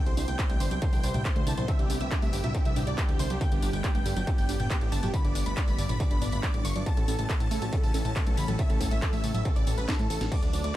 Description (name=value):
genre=uplifting trance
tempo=139 BPM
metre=4/4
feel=straight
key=unclear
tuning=A4 = 437 Hz
part: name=big supersaw lead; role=melody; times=0.0-10.7 s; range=D4 to C#6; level=-36 LUFS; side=right 1 dB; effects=phaser, sidechain pumping, dub echo
part: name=bright baby grand piano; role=second line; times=0.0-10.7 s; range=D4 to C#6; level=-40 LUFS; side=equal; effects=vintage 12-bit sampler grit, sidechain pumping, dub echo
part: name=lush unison pad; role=sustained chords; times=0.0-10.8 s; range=C3 to E4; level=-38 LUFS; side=equal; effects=chorus, phaser, sidechain pumping
part: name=analog pluck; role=arpeggios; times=0.0-10.7 s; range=C#2 to D4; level=-37 LUFS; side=right 2 dB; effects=chorus, sidechain pumping
part: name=fat analog bass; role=bass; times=0.1-10.7 s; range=G1 to A2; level=-32 LUFS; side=equal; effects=sidechain pumping
part: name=techno drum kit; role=drums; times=0.1-10.7 s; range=crash cymbal, handclaps, hi-hat, snare drum, tambourine, toms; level=-35 LUFS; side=equal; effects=overdrive
part: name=electronic kick drum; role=drums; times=0.4-10.4 s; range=none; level=-28 LUFS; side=equal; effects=distortion, overdrive
room=little or no reverb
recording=dark, warm production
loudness=-25 LUFS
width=side -14 dB against mid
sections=0.0-10.8 A section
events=drum fill 9.9-10.3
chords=0.0 Cmaj7; 3.4 G; 6.9 A